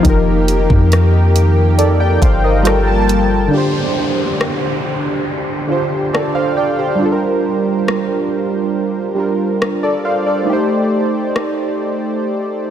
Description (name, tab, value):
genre	contemporary R&B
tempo	69 BPM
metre	4/4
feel	straight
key	G minor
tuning	A4 = 440 Hz
part	warm analog keys	accompaniment	0.0-12.7 s	D3 to A5	-15 LUFS	equal	chorus
part	lush unison pad	sustained chords	0.0-3.5 s	Eb3 to A5	-22 LUFS	right 1 dB	chorus
part	clean 808-style bass	bass	0.0-3.5 s	F1 to F2	-14 LUFS	equal	none
part	smooth R&B drum kit	drums	0.0-11.6 s	hi-hat, kick drum, rim click	-18 LUFS	equal	none
part	downlifter	sound effects	3.5-10.5 s	none	-25 LUFS	equal	none
room	light reverb, digital ambience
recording	none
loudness	-13 LUFS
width	side -10 dB against mid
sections	0.0-3.5 A section; 3.5-12.7 B section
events	synth keys fill 1.8-3.5; break 3.5-12.7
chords	0.0 F9sus4; 2.7 Gm9; 3.5 D7sus4; 7.0 Gm7; 10.5 Am7b5